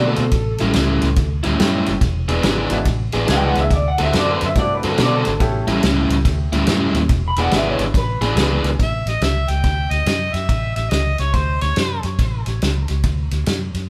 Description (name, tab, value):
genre	electric blues shuffle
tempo	142 BPM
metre	4/4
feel	swing 64% on 8ths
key	A mixolydian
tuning	A4 = 440 Hz
part	electric guitar through a small old amp	second line	0.0-8.8 s	A4 to B5	-26 LUFS	equal	none
part	overdriven semi-hollow guitar	riff	0.0-8.7 s	A2 to A4	-22 LUFS	equal	none
part	vintage muted fingered electric bass	bass	0.0-13.9 s	E1 to B2	-23 LUFS	equal	none
part	natural country drum kit	drums	0.2-13.8 s	kick drum, ride cymbal, snare drum	-24 LUFS	equal	none
part	clear upright piano	accompaniment	1.6-6.6 s	G#3 to G#4	-29 LUFS	equal	none
part	warm harmonica	melody	8.8-12.0 s	C5 to G5	-26 LUFS	equal	overdrive, analog delay
room	moderate studio reverb, RT60 0.8 s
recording	band playing live in one room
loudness	-18 LUFS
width	mono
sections	0.0-8.8 A section; 8.8-13.9 B section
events	clean electric guitar solo 0.0-8.8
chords	0.3 A7; 2.0 E7; 3.7 D7; 5.4 A7; 7.1 E7; 8.8 A